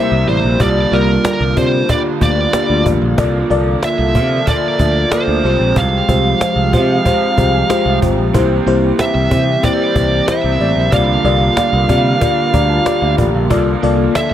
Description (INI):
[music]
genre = 1980s-style pop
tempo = 93 BPM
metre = 4/4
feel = straight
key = C mixolydian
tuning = A4 = 440 Hz
[part]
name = high-gain lead guitar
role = melody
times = 0.0-14.3 s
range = Bb4 to F5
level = -18 LUFS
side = right 2 dB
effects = distortion, digital delay
[part]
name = FM electric piano with soft pad layer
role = accompaniment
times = 0.0-14.3 s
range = Ab3 to Bb5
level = -18 LUFS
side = left 3 dB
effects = chorus, phaser
[part]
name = crunchy overdriven guitar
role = accompaniment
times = 0.0-14.3 s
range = F2 to C4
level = -24 LUFS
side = right 6 dB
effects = analog chorus
[part]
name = brassy analog pad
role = sustained chords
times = 0.0-14.3 s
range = C3 to A4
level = -21 LUFS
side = right 1 dB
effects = chorus
[part]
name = picked electric bass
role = bass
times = 0.1-14.3 s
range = Ab1 to C3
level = -16 LUFS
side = equal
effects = none
[part]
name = cajon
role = drums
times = 0.6-14.3 s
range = none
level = -19 LUFS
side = equal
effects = none
[sound]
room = light reverb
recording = none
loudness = -12 LUFS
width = side -11 dB against mid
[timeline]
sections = 0.0-14.3 A section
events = FM electric piano fill 7.1-8.3, 12.2-13.5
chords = 0.0 C7; 0.6 Gm7/C; 3.2 Bbmaj7/C; 5.4 Fmadd9; 8.3 C7; 10.9 Gm7/C; 13.5 Bbmaj7/C